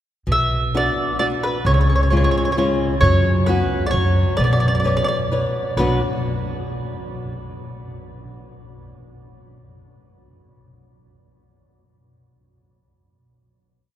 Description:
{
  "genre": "italian folk, Italian serenade",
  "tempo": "131 BPM",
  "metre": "3/4",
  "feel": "straight",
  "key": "B minor",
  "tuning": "A4 = 436 Hz",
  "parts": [
    { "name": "mandolin", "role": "melody", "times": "0.3-6.0 s", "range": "B4 to E5", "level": "-22 LUFS", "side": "right 1 dB", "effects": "none" },
    { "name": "flamenco guitar", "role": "accompaniment", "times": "0.3-6.0 s", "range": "B2 to D5", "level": "-24 LUFS", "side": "left 2 dB", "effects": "none" },
    { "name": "upright bass", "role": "bass", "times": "0.3-6.0 s", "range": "B1 to F#2", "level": "-20 LUFS", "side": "equal", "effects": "none" }
  ],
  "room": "wet cathedral reverb, RT60 7.1 s",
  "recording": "recorded in a church or concert hall",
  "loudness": "-17 LUFS",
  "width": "side -11 dB against mid",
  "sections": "0.3-5.8 A section; 5.8-7.2 final chord",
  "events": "none",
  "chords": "0.3 Bm; 1.7 C#; 3.0 F#sus4; 3.9 F#5; 4.4 Bmadd9; 5.8 Bm"
}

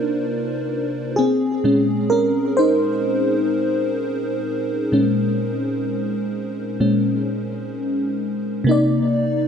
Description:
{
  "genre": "R&B",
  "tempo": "64 BPM",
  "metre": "4/4",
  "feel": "straight",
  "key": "unclear",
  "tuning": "A4 = 440 Hz",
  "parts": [
    { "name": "FM electric piano with soft pad layer", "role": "solo", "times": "0.0-9.5 s", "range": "Bb2 to D5", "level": "-18 LUFS", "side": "equal", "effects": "chorus, tape echo" }
  ],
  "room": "moderate plate reverb, RT60 2.4 s",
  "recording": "none",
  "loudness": "-18 LUFS",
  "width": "side -7 dB against mid",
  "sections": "0.0-8.7 A section",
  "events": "FM electric piano solo 0.0-8.7",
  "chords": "0.0 Cm9; 1.2 Bbm9; 8.7 Cm9"
}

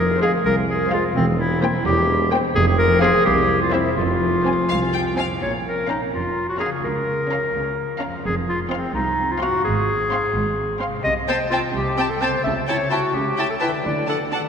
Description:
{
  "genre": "cinematic, playful, whimsical film cue",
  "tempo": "85 BPM (dotted quarters)",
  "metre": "6/8",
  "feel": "straight",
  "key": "F minor, Bb minor from 5.4 s",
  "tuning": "A4 = 440 Hz",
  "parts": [
    { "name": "clear clarinet", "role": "second line", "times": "0.0-14.4 s", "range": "C4 to E5", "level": "-21 LUFS", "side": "left 1 dB", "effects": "none" },
    { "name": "concert harp", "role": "arpeggios", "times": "0.0-14.5 s", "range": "F2 to C6", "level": "-29 LUFS", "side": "left 4 dB", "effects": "none" },
    { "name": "mellow tuba", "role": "bass", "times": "0.0-5.3 s", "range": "E1 to C2", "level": "-27 LUFS", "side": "right 2 dB", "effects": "none" },
    { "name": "rich studio cello section", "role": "bass", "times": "0.0-14.4 s", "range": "C2 to D3", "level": "-30 LUFS", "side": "right 2 dB", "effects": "none" },
    { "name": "rich studio double bass section", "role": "bass", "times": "0.0-14.4 s", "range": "E1 to D2", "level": "-28 LUFS", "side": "right 2 dB", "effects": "none" },
    { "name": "rich studio violin section", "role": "melody", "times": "0.2-14.4 s", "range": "E5 to C6", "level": "-29 LUFS", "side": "left 3 dB", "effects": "none" },
    { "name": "clear studio violin section", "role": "second line", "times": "0.2-14.4 s", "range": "C5 to G5", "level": "-30 LUFS", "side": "left 2 dB", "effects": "none" },
    { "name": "warm studio viola section", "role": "accompaniment", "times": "0.2-14.4 s", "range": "Ab3 to E4", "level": "-30 LUFS", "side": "right 1 dB", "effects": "none" }
  ],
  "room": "wet cathedral reverb, RT60 4.1 s",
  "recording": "none",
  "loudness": "-18 LUFS",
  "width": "side -7 dB against mid",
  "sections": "0.0-5.4 A section; 5.4-14.5 B section",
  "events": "none",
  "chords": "0.0 Fm; 1.2 C7/E; 2.6 Fm; 3.3 C; 4.0 Fm; 5.4 Bbm; 6.8 Bbm/Db; 8.2 F5; 9.6 Fm/Ab; 11.0 C5; 12.4 A7/C#; 13.8 D"
}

